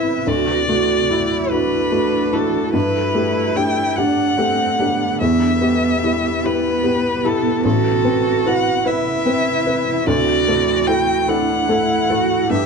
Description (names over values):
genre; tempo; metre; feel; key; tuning
neoclassical piano and strings; 49 BPM (dotted quarters); 6/8; rubato; unclear; A4 = 440 Hz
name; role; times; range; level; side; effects
rich violin; melody; 0.0-12.7 s; A4 to G5; -20 LUFS; left 3 dB; plate reverb
dark cello; second line; 0.0-12.7 s; B3 to G4; -22 LUFS; right 8 dB; none
felt-muted upright piano; accompaniment; 0.0-12.7 s; A1 to B4; -19 LUFS; left 1 dB; none
granular cloud pad; sustained chords; 0.0-12.7 s; A3 to B4; -26 LUFS; right 1 dB; built-in reverb
room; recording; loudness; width
moderate small room reverb, RT60 0.5 s; dark, warm production; -15 LUFS; side -5 dB against mid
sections
0.0-12.7 A section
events
none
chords
0.3 Dadd9; 2.7 Gadd9; 5.2 Em; 7.6 Amadd9; 10.1 Dadd9